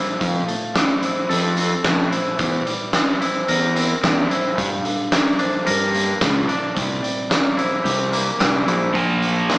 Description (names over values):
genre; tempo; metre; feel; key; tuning
post-rock; 110 BPM; 4/4; straight; unclear; A4 = 441 Hz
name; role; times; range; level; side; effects
twangy electric guitar; arpeggios; 0.0-9.6 s; G2 to Bb4; -24 LUFS; equal; none
vibraphone with hard mallets; arpeggios; 0.0-9.6 s; A4 to F5; -28 LUFS; right 1 dB; none
fuzz fingered electric bass; bass; 0.2-9.6 s; Bb1 to G2; -23 LUFS; equal; overdrive
oversized low-tuned drum kit; drums; 0.2-9.6 s; hi-hat, kick drum, snare drum; -20 LUFS; equal; none
distorted electric guitar; riff; 8.9-9.6 s; Bb2 to Bb3; -20 LUFS; right 2 dB; overdrive
room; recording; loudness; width
light reverb; band playing live in one room, small speaker sound; -17 LUFS; side -24 dB against mid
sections
0.0-8.9 A section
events
none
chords
0.2 Fmaj7; 2.4 C7/E; 4.6 Gm7; 6.8 C7; 8.9 Bb